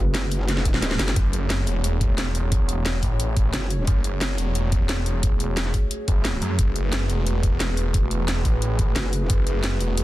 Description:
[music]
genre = dark technical drum and bass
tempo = 177 BPM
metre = 4/4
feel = straight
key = F# minor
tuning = A4 = 441 Hz
[part]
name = dark analog pad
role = sustained chords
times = 0.0-10.0 s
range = A3 to C#5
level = -32 LUFS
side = equal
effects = chorus, sidechain pumping
[part]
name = metallic wobble bass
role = bass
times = 0.0-1.1, 3.5-3.9, 9.0-9.3 s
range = F#1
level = -24 LUFS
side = equal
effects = chorus, tube saturation
[part]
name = drum and bass drum kit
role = drums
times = 0.1-10.0 s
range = hi-hat, snare drum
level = -28 LUFS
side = equal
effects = soft clipping on snare
[part]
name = electronic kick drum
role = drums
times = 0.7-9.4 s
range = none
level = -22 LUFS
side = equal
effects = none
[part]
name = snarling distorted saw bass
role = bass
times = 1.2-10.0 s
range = E1 to F#2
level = -24 LUFS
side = equal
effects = distortion, sidechain pumping
[sound]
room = little or no reverb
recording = dense, heavily limited modern master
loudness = -20 LUFS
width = side -16 dB against mid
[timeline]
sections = 0.0-1.2 A section; 1.2-10.0 A section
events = drop 0.0-1.2, 1.2-10.0; drum fill 0.5-1.2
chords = 0.0 F#madd9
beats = 0.14 0.48 0.82 | 1.16 1.50 1.84 2.18 | 2.52 2.86 3.20 3.54 | 3.87 4.21 4.55 4.89 | 5.23 5.57 5.91 6.25 | 6.59 6.92 7.26 7.60 | 7.94 8.28 8.62 8.96 | 9.30 9.64 9.98

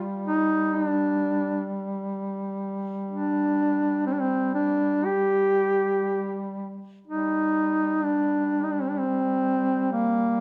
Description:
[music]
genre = caucasian folk, Caucasian lament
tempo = 58-65 BPM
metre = 4/4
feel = rubato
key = G minor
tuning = A4 = 440 Hz
[part]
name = mellow duduk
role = drone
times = 0.0-10.4 s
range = G3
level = -33 LUFS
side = equal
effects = none
[part]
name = mellow duduk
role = melody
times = 0.3-10.4 s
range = Bb3 to G4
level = -25 LUFS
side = equal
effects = none
[sound]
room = moderate recital hall reverb, RT60 1.4 s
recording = none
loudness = -25 LUFS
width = mono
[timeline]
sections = 0.0-7.1 A section; 7.1-10.4 B section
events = none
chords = none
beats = 0.26 1.19 2.15 | 3.11 4.06 5.04 6.06 | 7.07 8.04 8.99 9.94

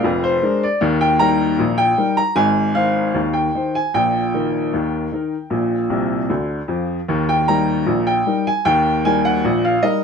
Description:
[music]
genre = ragtime piano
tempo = 77 BPM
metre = 2/4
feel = straight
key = Eb major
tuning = A4 = 440 Hz
[part]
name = clear upright piano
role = solo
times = 0.0-10.0 s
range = F1 to Bb5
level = -16 LUFS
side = left 1 dB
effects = none
[sound]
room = light reverb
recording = close, detailed microphones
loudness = -16 LUFS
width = side -6 dB against mid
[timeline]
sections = 0.0-7.1 A section; 7.1-10.0 A section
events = upright piano fill 5.9-7.1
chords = 0.0 Bb7; 0.8 Eb; 2.4 Ab; 3.9 Eb/Bb; 5.5 Bb; 7.1 Eb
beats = 0.04 | 0.81 1.59 | 2.37 3.15 | 3.94 4.72 | 5.51 6.29 | 7.08 7.87 | 8.64 9.42

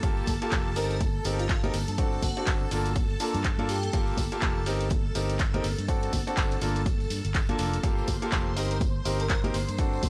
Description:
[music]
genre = piano house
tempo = 123 BPM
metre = 4/4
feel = swing 59% on 16ths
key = G minor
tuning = A4 = 440 Hz
[part]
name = string machine, violins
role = sustained chords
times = 0.0-10.1 s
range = A4 to C6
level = -41 LUFS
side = equal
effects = ensemble chorus, sidechain pumping
[part]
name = bright concert grand piano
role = riff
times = 0.0-10.1 s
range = Bb3 to Bb4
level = -34 LUFS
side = equal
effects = sidechain pumping
[part]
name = fingered electric bass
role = bass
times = 0.0-10.1 s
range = F1 to G2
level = -34 LUFS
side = equal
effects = tube saturation, sidechain pumping
[part]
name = dusty soul sampler-style drum kit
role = drums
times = 0.0-10.1 s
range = none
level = barely audible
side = none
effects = none
[part]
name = electronic kick drum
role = drums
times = 0.0-10.1 s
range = none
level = -31 LUFS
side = equal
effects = small room ambience
[part]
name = punchy analog drum machine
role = drums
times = 0.0-10.1 s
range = handclaps, hi-hat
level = -37 LUFS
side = equal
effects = small room ambience
[part]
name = tambourine and congas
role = percussion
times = 0.0-10.1 s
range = none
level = -41 LUFS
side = equal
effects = none
[part]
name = airy dreamy lead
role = melody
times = 0.8-4.0, 8.6-9.4 s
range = F4 to Bb4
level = -40 LUFS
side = equal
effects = chorus, analog delay
[sound]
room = little or no reverb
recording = dry, gritty hardware recording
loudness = -28 LUFS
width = mono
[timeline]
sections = 0.0-10.1 A section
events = none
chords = 0.0 Gm9; 0.8 Eb6/G; 1.7 D7/G; 2.7 Bbmaj7/G; 3.9 Gm9; 4.7 Eb6/G; 5.6 D7/G; 6.6 Bbmaj7/G; 7.8 Gm9; 8.6 Eb6/G; 9.5 D7/G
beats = | 0.03 0.52 1.01 1.49 | 1.98 2.47 2.96 3.44 | 3.93 4.42 4.91 5.40 | 5.88 6.37 6.86 7.35 | 7.83 8.32 8.81 9.30 | 9.79

